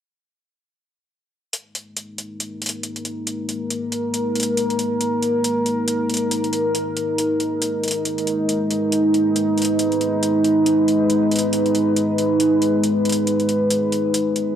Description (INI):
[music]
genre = deep dubstep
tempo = 138 BPM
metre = 4/4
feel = swing 59% on 16ths, half-time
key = G# minor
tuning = A4 = 444 Hz
[part]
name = deep dark ambient pad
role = sustained chords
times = 2.3-14.6 s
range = G#3 to B4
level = -18 LUFS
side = equal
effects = chorus, built-in reverb
[part]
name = electronic hi-hat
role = drums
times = 1.5-14.5 s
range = none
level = -26 LUFS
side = equal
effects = overdrive
[sound]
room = light reverb, digital ambience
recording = dry, gritty hardware recording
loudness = -18 LUFS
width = side -9 dB against mid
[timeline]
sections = 1.5-14.6 A section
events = none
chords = 1.5 G#5